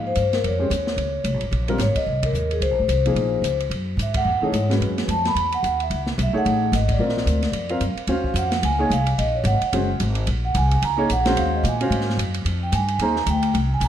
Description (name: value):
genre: modal jazz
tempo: 220 BPM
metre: 4/4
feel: swing 58% on 8ths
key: Eb dorian from 8.1 s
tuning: A4 = 441 Hz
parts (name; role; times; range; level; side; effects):
- vibraphone with soft mallets; melody; 0.0-13.9 s; Ab4 to Cb6; -24 LUFS; right 1 dB; ping-pong delay
- warm baby grand piano; accompaniment; 0.0-13.2 s; Fb3 to F5; -26 LUFS; equal; none
- upright bass; bass; 0.0-13.9 s; Gb1 to Bb2; -22 LUFS; equal; none
- open jazz drum kit; drums; 0.2-13.9 s; hi-hat, kick drum, ride cymbal, snare drum; -29 LUFS; right 1 dB; none
room: moderate plate reverb, RT60 1.2 s, studio reverb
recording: dreamy mix soaked in reverb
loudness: -19 LUFS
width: side -10 dB against mid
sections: 0.0-8.1 A section; 8.1-13.9 B section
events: band accent 2.2, 4.1, 6.9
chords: 0.0 Bbm11; 3.7 Gbm11; 7.0 Bb; 8.1 Ebm11; 12.5 Fm11